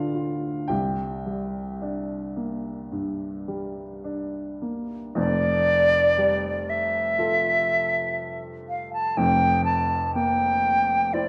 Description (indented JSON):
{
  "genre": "classical, impressionist duo for flute and grand piano",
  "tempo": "52-62 BPM",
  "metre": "4/4",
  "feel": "rubato",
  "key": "F major",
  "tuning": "A4 = 443 Hz",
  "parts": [
    { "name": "warm baby grand piano", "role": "accompaniment", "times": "0.0-11.3 s", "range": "F1 to A5", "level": "-30 LUFS", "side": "equal", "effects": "none" },
    { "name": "silver concert flute", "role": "melody", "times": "5.2-11.3 s", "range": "D5 to A5", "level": "-23 LUFS", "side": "equal", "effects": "none" }
  ],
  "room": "wet recital hall reverb, RT60 1.8 s",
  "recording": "dark, warm production",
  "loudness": "-24 LUFS",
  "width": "mono",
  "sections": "0.0-5.2 A section; 5.2-11.3 B section",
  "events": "none",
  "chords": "0.0 Dm7; 0.7 Csus2; 5.2 F69; 9.2 C7(no3)/F (rootless)"
}